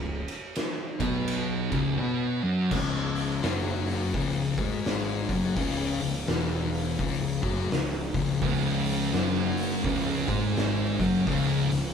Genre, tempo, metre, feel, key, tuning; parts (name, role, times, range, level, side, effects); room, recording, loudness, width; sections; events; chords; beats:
stoner and doom metal; 84 BPM; 4/4; swing 61% on 8ths; C# minor; A4 = 439 Hz
thick fuzz guitar; riff; 0.0-11.9 s; C#2 to B3; -28 LUFS; left 6 dB; distortion
thick fuzz guitar; riff; 0.0-2.7, 8.4-11.9 s; C#2 to B3; -28 LUFS; right 6 dB; distortion
fuzz picked electric bass; bass; 0.0-11.9 s; C#1 to B1; -33 LUFS; right 1 dB; overdrive
oversized low-tuned drum kit; drums; 0.3-11.8 s; crash cymbal, hi-hat, kick drum, ride cymbal, snare drum; -31 LUFS; equal
light reverb; band playing live in one room; -25 LUFS; side -7 dB against mid
0.0-2.7 A section; 2.7-11.9 B section
0.0 N.C.; 2.7 C#m
0.56 1.28 1.99 | 2.71 3.42 4.14 4.85 | 5.57 6.28 6.99 7.71 | 8.42 9.13 9.84 10.56 | 11.27